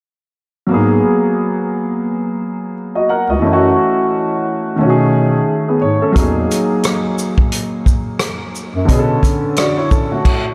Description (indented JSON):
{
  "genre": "hip hop, jazz-hop",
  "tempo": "88 BPM",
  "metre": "4/4",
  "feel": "swing 61% on 16ths",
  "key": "G# minor",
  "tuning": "A4 = 440 Hz",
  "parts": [
    { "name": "warm baby grand piano", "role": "accompaniment", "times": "0.7-10.4 s", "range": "D3 to F#5", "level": "-17 LUFS", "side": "equal", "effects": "subtle chorus" },
    { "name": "breathy bass clarinet", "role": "bass", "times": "0.7-9.2 s", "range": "C#2 to B2", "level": "-19 LUFS", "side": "equal", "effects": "none" },
    { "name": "vintage drum kit", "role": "drums", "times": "6.2-10.4 s", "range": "crash cymbal, hi-hat, kick drum, rim click, shaker", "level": "-18 LUFS", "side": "equal", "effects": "none" }
  ],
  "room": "wet cathedral reverb, RT60 4.3 s",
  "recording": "dreamy mix soaked in reverb",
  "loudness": "-15 LUFS",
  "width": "mono",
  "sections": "0.7-10.5 A section",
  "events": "none",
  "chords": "0.7 G#m9; 3.4 F#m7; 4.8 B13; 6.2 Emaj9#11 (rootless); 8.9 Bm9"
}